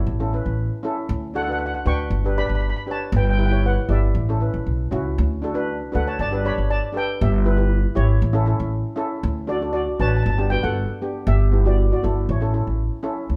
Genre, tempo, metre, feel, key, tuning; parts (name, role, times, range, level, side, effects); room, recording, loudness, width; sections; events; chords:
calypso; 118 BPM; 4/4; straight; A4 = 440 Hz
steel pan; melody; 0.0-12.8 s; E4 to C#6; -28 LUFS; equal
steel pan; accompaniment; 0.0-13.3 s; B3 to D5; -29 LUFS; equal
upright bass; bass; 0.0-13.4 s; G1 to D2; -23 LUFS; equal
light reverb; band playing live in one room; -22 LUFS; mono
0.0-13.3 A section
0.1 A; 1.1 D; 2.1 G; 3.1 Em7/G; 4.1 A7; 5.2 D; 6.2 Gadd9; 7.2 Em/G; 8.2 A7; 9.2 D; 10.2 Gadd9; 11.3 Em/G; 12.3 A